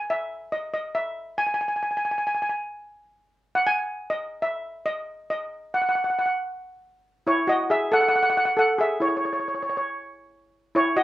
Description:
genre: calypso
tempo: 138 BPM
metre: 4/4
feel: straight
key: E major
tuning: A4 = 440 Hz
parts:
  - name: steel pan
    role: solo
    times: 0.0-11.0 s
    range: E4 to G#5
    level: -22 LUFS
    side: equal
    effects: none
room: light reverb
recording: none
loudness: -22 LUFS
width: side -15 dB against mid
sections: 0.0-6.8 A section; 6.8-11.0 B section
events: none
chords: 0.0 N.C.; 8.6 E69; 10.3 N.C.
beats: 0.29 0.72 1.16 | 1.60 2.03 2.47 2.90 | 3.34 3.78 4.21 4.65 | 5.08 5.52 5.96 6.39 | 6.83 7.26 7.70 8.13 | 8.57 9.00 9.44 9.87 | 10.31 10.74

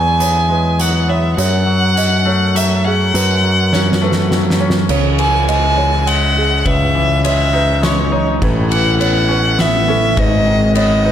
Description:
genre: post-rock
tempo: 102 BPM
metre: 3/4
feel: straight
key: unclear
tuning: A4 = 445 Hz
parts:
  - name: rich violin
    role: melody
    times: 0.0-11.1 s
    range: C#5 to G#5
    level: -17 LUFS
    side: right 1 dB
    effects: tape echo
  - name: felt-muted upright piano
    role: arpeggios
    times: 0.0-11.1 s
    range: G#4 to D#5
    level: -24 LUFS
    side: right 5 dB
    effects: tape echo
  - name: twangy electric guitar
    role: arpeggios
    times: 0.0-11.1 s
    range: E2 to D#4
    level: -21 LUFS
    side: left 4 dB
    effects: harmonic tremolo, tape echo
  - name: growling picked electric bass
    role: bass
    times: 0.0-11.1 s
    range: G#1 to F#2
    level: -16 LUFS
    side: equal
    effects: overdrive
  - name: oversized low-tuned drum kit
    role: drums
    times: 0.2-10.9 s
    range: crash cymbal, hi-hat, kick drum, ride cymbal, snare drum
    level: -20 LUFS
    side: right 1 dB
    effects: none
  - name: pedal steel guitar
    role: sustained chords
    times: 4.9-11.1 s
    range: C#3 to C#5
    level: -24 LUFS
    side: right 3 dB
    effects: none
room: light reverb, studio reverb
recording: none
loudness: -12 LUFS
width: side -10 dB against mid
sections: 0.0-4.9 A section; 4.9-11.1 B section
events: drum fill 3.7-4.9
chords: 0.0 Eadd9; 1.4 F#m; 4.9 C#madd9; 8.4 Aadd9; 10.2 G#m7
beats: 0.21 0.80 | 1.39 1.97 2.56 | 3.15 3.73 4.32 | 4.91 5.49 6.08 | 6.67 7.25 7.84 | 8.42 9.01 9.60 | 10.18 10.77

